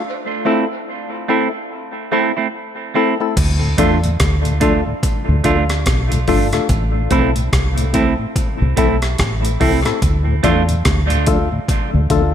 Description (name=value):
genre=dub reggae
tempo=72 BPM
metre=4/4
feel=swing 60% on 16ths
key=D dorian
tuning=A4 = 440 Hz
part: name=percussive organ stab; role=stabs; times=0.0-12.3 s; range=A3 to A4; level=-21 LUFS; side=left 7 dB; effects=chorus, low-pass filter, dub echo
part: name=semi-hollow electric guitar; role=accompaniment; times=0.5-10.6 s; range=A3 to F4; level=-21 LUFS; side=right 8 dB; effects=low-pass filter, dub echo
part: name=deep dub fingered electric bass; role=bass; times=3.4-12.3 s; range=G1 to E2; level=-17 LUFS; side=equal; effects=none
part: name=breakbeat sampler-style drum kit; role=drums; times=3.4-12.3 s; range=crash cymbal, hi-hat, kick drum, rim click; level=-20 LUFS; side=equal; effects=overdrive
part: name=mellow tonewheel organ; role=accompaniment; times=3.6-12.2 s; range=D2 to D4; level=-24 LUFS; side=left 2 dB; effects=chorus vibrato, slow rotary speaker, dub echo
room=light reverb, digital ambience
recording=none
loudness=-14 LUFS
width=side -9 dB against mid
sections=0.0-3.4 A section; 3.4-12.3 B section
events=break 0.0-3.4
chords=0.0 Am; 3.4 Dm; 6.7 Am; 10.0 Dm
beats=| 0.04 0.87 1.71 2.54 | 3.37 4.20 5.03 5.87 | 6.70 7.53 8.36 9.19 | 10.02 10.85 11.69